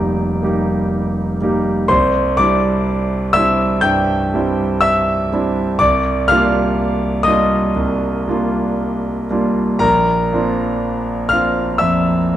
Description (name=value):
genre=classical, impressionist solo piano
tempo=56-64 BPM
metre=4/4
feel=rubato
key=unclear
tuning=A4 = 438 Hz
part: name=clear grand piano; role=solo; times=0.0-12.4 s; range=F1 to G6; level=-14 LUFS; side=equal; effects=none
room=wet recital hall reverb, RT60 1.7 s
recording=dark, warm production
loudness=-14 LUFS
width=side -12 dB against mid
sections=0.0-12.4 A section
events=none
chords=0.0 Ebmaj7/F; 1.9 Cadd9; 5.8 Ebmaj9/C; 9.8 Bbadd9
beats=0.90 | 1.90 2.86 3.83 4.83 | 5.81 6.76 7.75 8.78 | 9.82 10.82 11.82